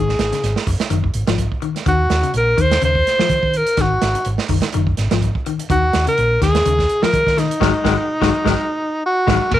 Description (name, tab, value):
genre	afrobeat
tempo	126 BPM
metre	4/4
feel	swing 56% on 16ths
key	unclear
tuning	A4 = 440 Hz
part	bright alto saxophone	melody	0.0-9.6 s	Eb4 to C5	-17 LUFS	equal	none
part	electric guitar at the edge of break-up	arpeggios	0.0-9.6 s	Bb2 to Ab3	-22 LUFS	left 9 dB	slapback echo
part	hollow-body short-scale fingered electric bass	bass	0.0-9.6 s	Gb1 to Eb3	-20 LUFS	equal	none
part	crunchy breakbeat drum kit	drums	0.1-9.6 s	crash cymbal, hi-hat, kick drum, snare drum	-22 LUFS	right 4 dB	none
room	light reverb, studio ambience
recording	1960s-style stereo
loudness	-15 LUFS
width	side -12 dB against mid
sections	0.0-9.5 A section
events	band accent 7.6-9.5; drum fill 9.0-9.5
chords	0.0 Ab5; 1.9 Ebm7; 3.8 Ab5; 5.7 Eb5; 7.6 Ab5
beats	0.43 0.91 1.39 | 1.87 2.35 2.83 3.31 | 3.78 4.26 4.74 5.22 | 5.70 6.17 6.65 7.13 | 7.61 8.08 8.56 9.04 | 9.52